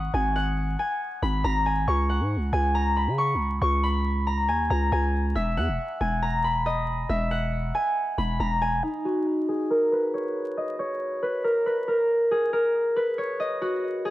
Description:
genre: hip hop, drill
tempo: 138 BPM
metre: 4/4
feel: half-time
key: unclear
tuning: A4 = 440 Hz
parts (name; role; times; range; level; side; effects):
- concert harp; melody; 0.0-14.1 s; Eb4 to Eb6; -24 LUFS; equal; low-pass filter, analog delay
- growling 808-style bass; bass; 0.0-8.8 s; E1 to Db3; -25 LUFS; equal; none
room: small room ambience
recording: dry, gritty hardware recording, vinyl crackle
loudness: -23 LUFS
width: side -15 dB against mid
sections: 0.0-8.8 A section; 8.8-14.1 B section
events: filter sweep on harp 8.8-14.1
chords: 0.0 Abm11; 1.9 Db5; 5.4 E; 8.8 N.C.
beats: | 0.14 0.57 1.01 1.44 | 1.88 2.31 2.75 3.18 | 3.62 4.05 4.49 4.92 | 5.36 5.79 6.22 6.66 | 7.09 7.53 7.96 8.40 | 8.83 9.27 9.70 10.14 | 10.57 11.01 11.44 11.88 | 12.31 12.75 13.18 13.62 | 14.05

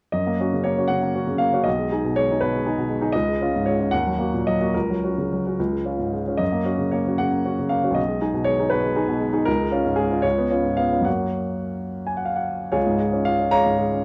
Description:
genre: classical, romantic character piece for solo piano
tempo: 68-83 BPM (dotted quarters)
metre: 6/8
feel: rubato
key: F# major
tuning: A4 = 441 Hz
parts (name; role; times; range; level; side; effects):
- clear baby grand piano; solo; 0.1-14.0 s; B1 to Bb5; -22 LUFS; equal; none
room: light reverb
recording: dark, warm production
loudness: -22 LUFS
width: mono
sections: 0.1-12.8 A section; 12.8-14.0 B section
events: none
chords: 0.1 F#; 1.7 G#m/B; 3.1 C#; 3.9 D#m; 4.7 F#/C#; 5.6 C#; 6.4 F#; 8.0 G#m/B; 9.5 C#; 10.2 C#7; 11.1 F#; 12.8 Db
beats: | 0.14 0.90 | 1.66 2.41 | 3.15 3.92 | 4.74 5.58 | 6.41 7.21 | 7.98 8.73 | 9.48 10.24 | 11.06 11.91 | 12.76 13.54

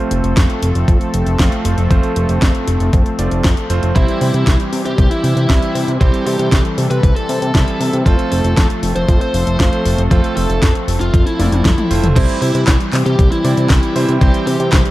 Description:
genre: italo disco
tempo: 117 BPM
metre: 4/4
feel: straight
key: C major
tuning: A4 = 440 Hz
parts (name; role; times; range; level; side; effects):
- warm analog pad; sustained chords; 0.0-14.9 s; E3 to A4; -22 LUFS; left 1 dB; chorus, tremolo
- clear electric grand piano; stabs; 0.0-14.9 s; G3 to F5; -23 LUFS; right 4 dB; low-pass filter
- fat analog bass; bass; 0.1-14.8 s; F1 to C3; -17 LUFS; equal; none
- house drum kit; drums; 0.1-14.9 s; crash cymbal, handclaps, hi-hat, snare drum, toms; -22 LUFS; equal; overdrive
- electronic kick drum; drums; 0.4-14.8 s; none; -13 LUFS; equal; none
- bluesy overdriven lead guitar; melody; 4.0-14.8 s; E4 to C5; -21 LUFS; left 1 dB; distortion, digital delay
room: little or no reverb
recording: dark, warm production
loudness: -12 LUFS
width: side -16 dB against mid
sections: 0.0-12.2 A section; 12.2-14.9 B section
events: drum fill 11.4-12.2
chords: 0.0 F; 4.0 C; 8.1 F; 12.2 C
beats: 0.37 0.88 1.39 | 1.91 2.42 2.93 3.44 | 3.96 4.47 4.98 5.50 | 6.01 6.52 7.03 7.55 | 8.06 8.57 9.09 9.60 | 10.11 10.62 11.14 11.65 | 12.16 12.68 13.19 13.70 | 14.21 14.73

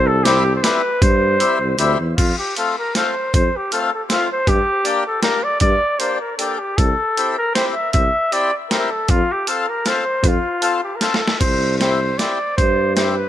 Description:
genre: alpine folk, alpine dance band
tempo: 156 BPM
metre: 3/4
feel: swing 54% on 8ths, rubato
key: F major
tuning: A4 = 441 Hz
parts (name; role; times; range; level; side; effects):
- clear flugelhorn; melody; 0.0-13.3 s; F4 to E5; -19 LUFS; equal; ping-pong delay
- mellow tuba; bass; 0.0-13.3 s; C2 to G2; -20 LUFS; equal; none
- accordion; accompaniment; 0.3-13.2 s; G3 to A4; -22 LUFS; left 4 dB; none
- boom bap sampler-style drum kit; drums; 0.3-13.1 s; crash cymbal, hi-hat, kick drum, snare drum; -19 LUFS; equal; none
room: light reverb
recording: none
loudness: -16 LUFS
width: side -12 dB against mid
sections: 0.0-2.2 A section; 2.2-11.4 B section; 11.4-13.3 A section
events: kick and snare drop out 1.4-2.2, 6.4-6.8; drum fill 11.0-11.4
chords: 0.0 C; 2.2 F; 4.5 Gm; 6.8 C; 9.1 F; 11.4 C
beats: 0.25 0.63 | 1.01 1.40 1.78 | 2.18 2.56 2.95 | 3.34 3.72 4.10 | 4.47 4.85 5.24 | 5.62 6.00 6.39 | 6.79 7.18 7.56 | 7.95 8.33 8.71 | 9.09 9.47 9.85 | 10.24 10.62 11.01 | 11.41 11.80 12.19 | 12.58 12.97

